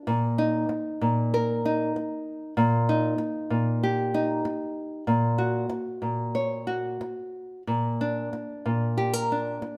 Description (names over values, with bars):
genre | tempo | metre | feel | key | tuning
folk, solo fingerstyle acoustic guitar | 95 BPM | 4/4 | rubato | unclear | A4 = 440 Hz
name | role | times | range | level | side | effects
nylon-string guitar | solo | 0.0-9.8 s | Bb2 to Db5 | -27 LUFS | equal | none
room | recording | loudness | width
wet large studio reverb, RT60 1.2 s | band playing live in one room | -27 LUFS | mono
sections
0.0-9.8 A section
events
none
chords
0.1 Bbsus4; 2.6 Eb/Bb; 5.1 Gb/Bb; 7.7 Gm/Bb (rootless)